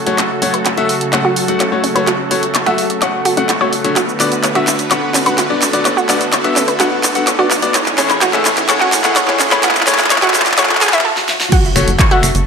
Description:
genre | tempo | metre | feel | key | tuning
progressive house | 127 BPM | 4/4 | straight | F# minor | A4 = 439 Hz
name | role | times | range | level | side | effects
filtered supersaw swell | sustained chords | 0.0-12.5 s | C#3 to C#5 | -20 LUFS | right 1 dB | vintage 12-bit sampler grit, sidechain pumping
riser, swell and impact | sound effects | 3.2-12.5 s | none | -26 LUFS | right 1 dB | none
bright grand piano | stabs | 0.1-12.3 s | A2 to F#5 | -17 LUFS | left 3 dB | sidechain pumping, ping-pong delay
pop drum kit | drums | 0.1-12.4 s | cabasa, crash cymbal, finger snaps, handclaps, hi-hat, snare drum | -16 LUFS | right 1 dB | sidechain pumping on hats, sidechain pumping on perc, sidechain pumping on cymbals
analog pluck | arpeggios | 0.2-12.2 s | C#4 to C#6 | -18 LUFS | right 1 dB | chorus, sidechain pumping, ping-pong delay
electronic kick drum | drums | 11.5-12.1 s | none | -13 LUFS | equal | overdrive
tight sequencer bass | bass | 11.8-12.4 s | F#1 | -16 LUFS | equal | sidechain pumping
room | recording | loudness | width
wet digital room reverb, RT60 1.0 s | high-pass filter | -11 LUFS | side -6 dB against mid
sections
0.0-11.5 A section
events
build-up 0.0-11.5; drum fill 0.0-11.0, 11.2-11.5; filter sweep on synth arpeggio sound 0.0-11.5; swell 10.6-11.5; break 11.0-11.5; impact 11.5-12.5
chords
0.0 F#m; 4.0 D6; 7.7 Amaj7; 11.5 F#m

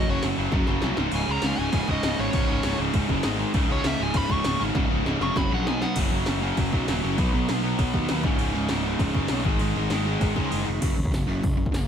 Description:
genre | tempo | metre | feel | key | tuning
punk rock | 198 BPM | 4/4 | straight | unclear | A4 = 440 Hz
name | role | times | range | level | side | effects
dark smooth lead guitar | melody | 0.0-6.0 s | Db5 to Db6 | -29 LUFS | right 1 dB | overdrive
overdriven electric guitar | riff | 0.0-11.9 s | Db2 to Cb4 | -28 LUFS | right 1 dB | none
tight distorted guitar | riff | 0.0-10.7 s | Db2 to Cb4 | -29 LUFS | left 1 dB | distortion
fuzz picked electric bass | bass | 0.1-11.9 s | Db1 to Eb2 | -29 LUFS | equal | overdrive
80s electronic pad drums | drums | 0.2-11.8 s | crash cymbal, hi-hat, kick drum, snare drum | -27 LUFS | equal | none
room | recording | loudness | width
little or no reverb | none | -22 LUFS | side -8 dB against mid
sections
0.0-6.0 A section; 6.0-10.8 B section; 10.8-11.9 C section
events
lead electric guitar solo 0.0-6.0; drum fill 0.5-1.1, 4.8-6.0; break 10.5-10.8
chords
0.0 Gb5; 1.0 Db5; 3.2 Ab5; 3.5 Db5; 5.4 Gb5; 5.7 Cb5; 6.0 Gb5; 7.2 Cb; 8.2 Db5; 9.5 Ab5; 10.8 Gb5

